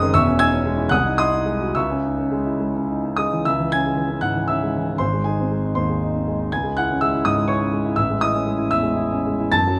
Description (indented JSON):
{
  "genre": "classical, romantic character piece for solo piano",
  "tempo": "69-84 BPM (dotted quarters)",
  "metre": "6/8",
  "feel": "rubato",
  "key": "C# minor",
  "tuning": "A4 = 439 Hz",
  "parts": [
    { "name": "warm concert grand piano", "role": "solo", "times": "0.0-9.8 s", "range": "E1 to A6", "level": "-21 LUFS", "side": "equal", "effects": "none" }
  ],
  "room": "light reverb",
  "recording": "close, detailed microphones",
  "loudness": "-21 LUFS",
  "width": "mono",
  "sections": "0.0-3.5 A section; 3.5-9.8 B section",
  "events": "none",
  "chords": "0.1 C#m/E; 0.9 G#7/B#; 1.8 C#m; 5.0 G#; 6.5 C#m; 8.0 Amaj7"
}